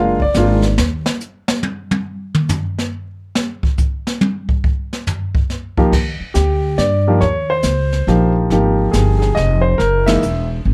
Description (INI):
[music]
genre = jazz piano trio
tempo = 140 BPM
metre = 3/4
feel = swing 65% on 8ths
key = unclear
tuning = A4 = 441 Hz
[part]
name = warm grand piano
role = melody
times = 0.0-0.7, 5.8-10.5 s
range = Fb3 to F5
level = -18 LUFS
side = equal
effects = none
[part]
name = upright bass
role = bass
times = 0.0-1.1, 5.9-10.7 s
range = Fb1 to G2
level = -19 LUFS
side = equal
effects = none
[part]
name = jazz brush drum kit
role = drums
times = 0.2-10.7 s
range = brushed snare drum, crash cymbal, hi-hat, kick drum, ride cymbal, snare drum, toms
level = -21 LUFS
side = equal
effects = none
[sound]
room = moderate club reverb, RT60 0.6 s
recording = none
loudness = -17 LUFS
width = mono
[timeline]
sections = 0.0-5.9 A section; 5.9-10.7 B section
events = grand piano solo 0.0-5.9; drum solo 0.8-5.9; band accent 10.0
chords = 0.0 Bb7; 0.8 N.C.; 5.9 Ebmaj7; 7.2 Eb13; 8.5 Ab5; 9.8 Gb7